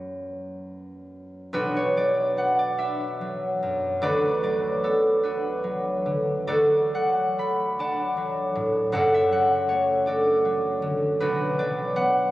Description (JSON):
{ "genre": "classical, solo harp piece", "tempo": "41-55 BPM (dotted quarters)", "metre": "6/8", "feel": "rubato", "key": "B minor", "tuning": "A4 = 442 Hz", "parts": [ { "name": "concert harp", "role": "solo", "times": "0.0-12.3 s", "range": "F#1 to B5", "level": "-22 LUFS", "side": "equal", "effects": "none" } ], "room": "wet church reverb, RT60 2.6 s", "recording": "recorded on a phone in the room, club reverb, compression", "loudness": "-21 LUFS", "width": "side -16 dB against mid", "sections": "0.0-1.5 A section; 1.5-12.3 B section", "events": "none", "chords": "0.0 F#; 1.5 Bm; 4.0 Bm/D; 6.5 D; 8.9 D/F#; 11.2 Bm", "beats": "0.10 | 1.53 2.78 | 4.03 5.24 | 6.48 7.79 | 8.93 10.06 | 11.21" }